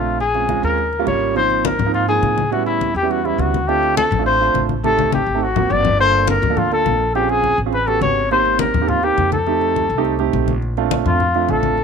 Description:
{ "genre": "Afro-Cuban jazz", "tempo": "207 BPM", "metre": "4/4", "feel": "straight", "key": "Bb major", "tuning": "A4 = 440 Hz", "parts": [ { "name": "breathy trumpet", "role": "melody", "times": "0.0-11.8 s", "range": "E4 to D5", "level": "-18 LUFS", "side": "left 4 dB", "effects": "none" }, { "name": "dark concert grand piano", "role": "accompaniment", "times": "0.0-11.8 s", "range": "F3 to A4", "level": "-21 LUFS", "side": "right 17 dB", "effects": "none" }, { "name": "upright bass", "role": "bass", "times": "0.0-11.8 s", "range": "G1 to A2", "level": "-23 LUFS", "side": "equal", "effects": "none" }, { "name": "congas", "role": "percussion", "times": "0.2-11.8 s", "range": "none", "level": "-24 LUFS", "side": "left 10 dB", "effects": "none" } ], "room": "studio reverb", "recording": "1960s-style stereo with parts hard left and right", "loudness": "-15 LUFS", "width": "side -6 dB against mid", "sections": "0.0-1.4 A section; 1.4-10.6 B section; 10.6-11.8 C section", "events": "drum fill 4.8-6.0; trumpet solo 10.6-11.8", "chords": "0.2 Bbm7; 0.8 Eb7; 1.4 Ab69; 2.5 A7; 3.7 Dm7; 4.8 Am7b5; 5.4 Ab13; 6.0 Gm9; 7.2 Bbm7; 7.7 A13; 8.3 Abmaj9; 9.5 F7; 10.6 Bbmaj9" }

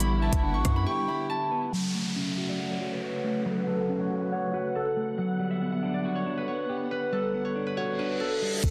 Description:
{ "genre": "hip hop, drill", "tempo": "139 BPM", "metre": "4/4", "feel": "half-time", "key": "F# phrygian", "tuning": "A4 = 441 Hz", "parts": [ { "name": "concert harp", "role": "melody", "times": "0.0-8.7 s", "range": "A4 to C#6", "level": "-34 LUFS", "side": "equal", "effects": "low-pass filter, tape echo" }, { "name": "semi-hollow electric guitar", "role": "accompaniment", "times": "0.0-8.6 s", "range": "F#3 to F#5", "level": "-33 LUFS", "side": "equal", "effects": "low-pass filter" }, { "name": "muted studio string section", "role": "sustained chords", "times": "0.0-8.6 s", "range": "C#3 to F#5", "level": "-39 LUFS", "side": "equal", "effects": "low-pass filter" }, { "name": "hard-hitting 808-style bass", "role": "bass", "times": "0.0-0.9, 8.6-8.7 s", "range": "F#1 to F#2", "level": "-30 LUFS", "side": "equal", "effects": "none" }, { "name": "drill drum kit", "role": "drums", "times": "0.0-0.8, 8.6-8.7 s", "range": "crash cymbal, hi-hat, kick drum, rim click", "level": "-29 LUFS", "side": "equal", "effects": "none" }, { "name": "breathy flute-like synth lead", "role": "second line", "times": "0.2-1.3, 8.6-8.7 s", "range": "A4 to G5", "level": "-42 LUFS", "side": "equal", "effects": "chorus, tape echo" }, { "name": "downlifter, reverse cymbal and impact", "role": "sound effects", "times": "1.7-8.7 s", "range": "none", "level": "-38 LUFS", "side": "equal", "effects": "none" } ], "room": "light reverb, digital ambience", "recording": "dense, heavily limited modern master", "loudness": "-29 LUFS", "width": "mono", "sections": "0.0-1.7 A section; 1.7-8.6 B section", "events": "break 0.9-1.7; filter sweep 1.7-8.6; reverse cymbal 7.9-8.6", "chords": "0.0 Em7/F#; 1.7 F#m; 5.2 Gmaj7" }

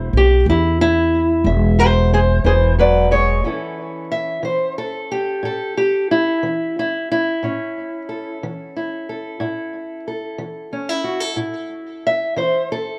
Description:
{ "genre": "acoustic country blues, solo or duo", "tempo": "60 BPM (dotted quarters)", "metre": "12/8", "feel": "straight", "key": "A mixolydian", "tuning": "A4 = 440 Hz", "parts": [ { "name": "fingerpicked steel-string acoustic guitar", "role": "melody", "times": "0.0-13.0 s", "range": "A2 to E5", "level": "-21 LUFS", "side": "equal", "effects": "plate reverb" }, { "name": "upright bass", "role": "bass", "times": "0.0-3.4 s", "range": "E1 to E2", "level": "-18 LUFS", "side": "equal", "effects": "none" } ], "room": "moderate small room reverb, RT60 0.5 s", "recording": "none", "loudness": "-18 LUFS", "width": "mono", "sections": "0.0-3.4 A section; 3.4-13.0 B section", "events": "steel-string acoustic guitar solo 0.0-3.4", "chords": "0.0 N.C.; 3.4 A" }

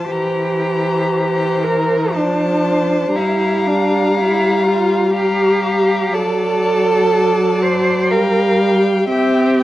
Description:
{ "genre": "classical, slow romantic movement for string quartet", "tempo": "60 BPM", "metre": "3/4", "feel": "rubato", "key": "unclear", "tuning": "A4 = 439 Hz", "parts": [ { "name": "rich violin", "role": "melody", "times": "0.0-9.6 s", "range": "G5 to Bb5", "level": "-25 LUFS", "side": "left 6 dB", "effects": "none" }, { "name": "warm violin", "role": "second line", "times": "0.0-9.6 s", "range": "C5 to F5", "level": "-22 LUFS", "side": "left 2 dB", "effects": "none" }, { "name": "warm viola", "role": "accompaniment", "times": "0.0-9.6 s", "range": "E3 to C4", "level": "-17 LUFS", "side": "equal", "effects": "none" }, { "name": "rich cello", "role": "bass", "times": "0.0-9.6 s", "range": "D4 to C5", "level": "-18 LUFS", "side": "right 2 dB", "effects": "none" } ], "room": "moderate recital hall reverb, RT60 1.3 s", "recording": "worn, warbling old tape, cassette tape, warbly pitch drift", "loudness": "-13 LUFS", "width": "side -15 dB against mid", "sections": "0.0-9.6 A section", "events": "none", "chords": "0.1 C7/E; 2.1 F; 3.1 Gm7; 6.1 D7/F#; 8.1 Gm7; 9.1 C" }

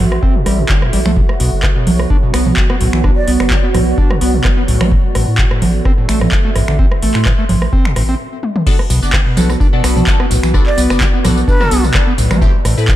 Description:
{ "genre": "acid house", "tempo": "128 BPM", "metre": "4/4", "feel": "swing 54% on 16ths", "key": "B phrygian", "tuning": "A4 = 440 Hz", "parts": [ { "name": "warm analog pad", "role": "sustained chords", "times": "0.0-8.2 s", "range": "F#3 to F#4", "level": "-24 LUFS", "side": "right 1 dB", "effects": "wide subtle chorus, sidechain pumping" }, { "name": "overdriven acid bass", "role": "riff", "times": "0.0-12.8 s", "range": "G2 to D4", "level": "-19 LUFS", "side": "equal", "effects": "distortion, lush chorus, ping-pong delay" }, { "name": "saturated sub bass", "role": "bass", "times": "0.0-13.0 s", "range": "F#1 to A2", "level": "-16 LUFS", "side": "equal", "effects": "sidechain pumping" }, { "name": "warbly tape-like pad", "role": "texture", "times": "0.0-13.0 s", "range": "B3 to C6", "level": "-23 LUFS", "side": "right 3 dB", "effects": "chorus, built-in reverb, sidechain pumping" }, { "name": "electro analog drum machine", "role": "drums", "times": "0.1-13.0 s", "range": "congas, crash cymbal, finger snaps, handclaps, hi-hat, rim click, tambourine, toms", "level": "-18 LUFS", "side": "right 1 dB", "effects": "overdrive" }, { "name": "electronic kick drum", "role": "drums", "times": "0.2-13.0 s", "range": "none", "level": "-14 LUFS", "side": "equal", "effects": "none" }, { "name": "breathy concert flute", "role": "melody", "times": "3.2-3.3, 10.7-11.8 s", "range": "B4 to D5", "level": "-22 LUFS", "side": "right 1 dB", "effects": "ping-pong delay" }, { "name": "band-passed chord stab", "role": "stabs", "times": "8.7-12.9 s", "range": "A3 to D5", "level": "-22 LUFS", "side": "left 3 dB", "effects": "phaser, wide subtle chorus, ping-pong delay" } ], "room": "light reverb, digital ambience", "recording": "dark, warm production", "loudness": "-11 LUFS", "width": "side -13 dB against mid", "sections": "0.0-8.7 A section; 8.7-13.0 B section", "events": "break 8.2-8.7; drum fill 8.4; drop 8.7-13.0", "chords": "0.0 Am7; 1.2 Bm7; 4.9 Am; 8.7 Bm7; 12.4 Am7" }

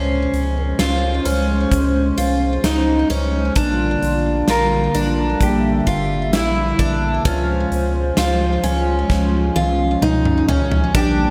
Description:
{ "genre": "dream pop", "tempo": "65 BPM", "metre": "4/4", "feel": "straight", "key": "unclear", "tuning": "A4 = 442 Hz", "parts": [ { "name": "mellow electric guitar", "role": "melody", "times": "0.0-11.3 s", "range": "E4 to C5", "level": "-27 LUFS", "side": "equal", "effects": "lush chorus, delay" }, { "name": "hollow soft pad", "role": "sustained chords", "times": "0.0-11.3 s", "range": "D3 to E5", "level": "-24 LUFS", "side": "equal", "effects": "chorus" }, { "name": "picked twelve-string acoustic guitar", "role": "arpeggios", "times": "0.0-11.3 s", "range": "Db4 to F4", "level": "-24 LUFS", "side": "equal", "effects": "subtle chorus, delay" }, { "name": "warm sub bass", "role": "bass", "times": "0.0-11.3 s", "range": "G1 to Db2", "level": "-24 LUFS", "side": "equal", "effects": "none" }, { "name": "huge arena drum kit", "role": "drums", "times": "0.3-11.2 s", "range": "hi-hat, kick drum, snare drum, toms", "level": "-26 LUFS", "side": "equal", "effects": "gated reverb" } ], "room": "light reverb, small room ambience", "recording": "bright 1980s-style digital production", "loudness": "-18 LUFS", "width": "mono", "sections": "0.0-10.9 A section", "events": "drum fill 9.1-10.9", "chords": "0.0 Dbmaj7; 3.6 Bb6; 7.3 Dbmaj7" }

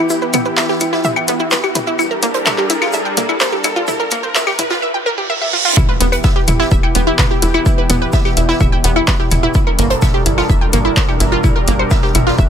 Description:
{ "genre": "melodic techno", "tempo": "127 BPM", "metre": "4/4", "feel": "straight", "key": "unclear", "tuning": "A4 = 440 Hz", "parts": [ { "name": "lush unison pad", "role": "sustained chords", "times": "0.0-12.5 s", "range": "E3 to Bb4", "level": "-22 LUFS", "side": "equal", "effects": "chorus, sidechain pumping" }, { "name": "wide unison pluck", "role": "arpeggios", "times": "0.0-12.5 s", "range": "Bb3 to G5", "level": "-17 LUFS", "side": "right 1 dB", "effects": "sidechain pumping, digital delay" }, { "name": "tight sequencer bass", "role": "bass", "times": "0.0-12.5 s", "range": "D1 to G1", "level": "-18 LUFS", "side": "equal", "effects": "sidechain pumping, high-pass filter" }, { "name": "riser, reverse cymbal and impact", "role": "sound effects", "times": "0.1-7.7 s", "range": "none", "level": "-22 LUFS", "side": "right 1 dB", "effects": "none" }, { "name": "open jazz drum kit", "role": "drums", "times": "0.1-12.5 s", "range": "hi-hat, shaker, snare drum", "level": "-28 LUFS", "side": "right 1 dB", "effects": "sidechain pumping on hats, high-pass filter on hats, high-pass filter on snare, sidechain pumping on perc, high-pass filter on perc, high-pass filter on room" }, { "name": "maracas", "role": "percussion", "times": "0.1-4.8 s", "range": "none", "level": "-28 LUFS", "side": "right 2 dB", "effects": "none" }, { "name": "punchy analog drum machine", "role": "drums", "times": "0.3-12.2 s", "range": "claves, handclaps, hi-hat, toms", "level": "-19 LUFS", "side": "left 2 dB", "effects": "overdrive" }, { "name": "overtone-sweeping drone", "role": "drone", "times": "7.2-12.5 s", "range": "E2 to B2", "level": "-26 LUFS", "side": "equal", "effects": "chorus, built-in reverb, sidechain pumping" }, { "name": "electronic kick drum", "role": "drums", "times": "5.8-12.5 s", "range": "none", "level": "-15 LUFS", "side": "equal", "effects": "overdrive" } ], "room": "small room ambience", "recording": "high-pass filter", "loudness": "-12 LUFS", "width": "side -8 dB against mid", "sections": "0.0-5.8 A section; 5.8-12.5 B section", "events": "build-up 0.0-5.8; filter sweep on synth arpeggio sound 0.0-5.8; filter sweep 0.0-5.8; riser 0.1-4.8; reverse cymbal 4.8-5.8; drop 5.8-12.5; impact 5.8-7.7", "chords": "0.0 Em; 2.0 Gm7; 5.8 Em; 9.6 Gm7" }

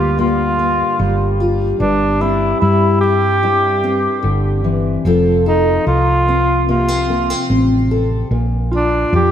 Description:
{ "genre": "acoustic folk-pop ballad", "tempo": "74 BPM", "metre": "4/4", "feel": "straight", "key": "unclear", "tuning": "A4 = 441 Hz", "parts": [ { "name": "dark cor anglais", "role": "melody", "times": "0.0-9.3 s", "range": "D4 to G4", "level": "-17 LUFS", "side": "equal", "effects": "ping-pong delay" }, { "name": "fingerpicked steel-string acoustic guitar", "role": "accompaniment", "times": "0.0-9.3 s", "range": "G2 to A4", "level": "-18 LUFS", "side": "left 2 dB", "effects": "wide subtle chorus" }, { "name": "hollow-body short-scale fingered electric bass", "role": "bass", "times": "0.0-9.3 s", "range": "F1 to G2", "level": "-18 LUFS", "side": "equal", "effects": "none" }, { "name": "concert harp", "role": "arpeggios", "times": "8.7-9.3 s", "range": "F4", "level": "-21 LUFS", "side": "equal", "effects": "none" } ], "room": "wet lush hall reverb, RT60 2.0 s, small room ambience", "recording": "dreamy mix soaked in reverb", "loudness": "-13 LUFS", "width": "side -9 dB against mid", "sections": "0.0-9.3 A section", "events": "none", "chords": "0.0 Gm7; 1.8 C/G; 5.1 F; 8.3 Bb" }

